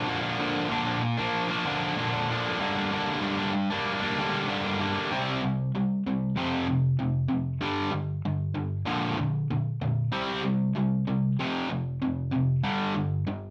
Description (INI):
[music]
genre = rock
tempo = 96 BPM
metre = 4/4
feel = straight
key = G minor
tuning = A4 = 440 Hz
[part]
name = cranked stack guitar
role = solo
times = 0.0-13.5 s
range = F2 to D4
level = -28 LUFS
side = equal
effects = overdrive
[sound]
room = wet studio ambience, RT60 0.5 s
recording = none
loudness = -28 LUFS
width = mono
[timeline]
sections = 0.0-5.1 A section; 5.1-13.5 B section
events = none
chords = 0.0 Bb; 2.6 Gm; 5.1 C5; 6.4 F5; 7.6 G5; 8.9 Bb; 10.1 C5; 11.4 F5; 12.6 G5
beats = | 0.09 0.71 1.34 1.97 | 2.59 3.22 3.85 4.48 | 5.11 5.73 6.36 6.99 | 7.62 8.25 8.88 9.51 | 10.13 10.76 11.39 12.02 | 12.65 13.28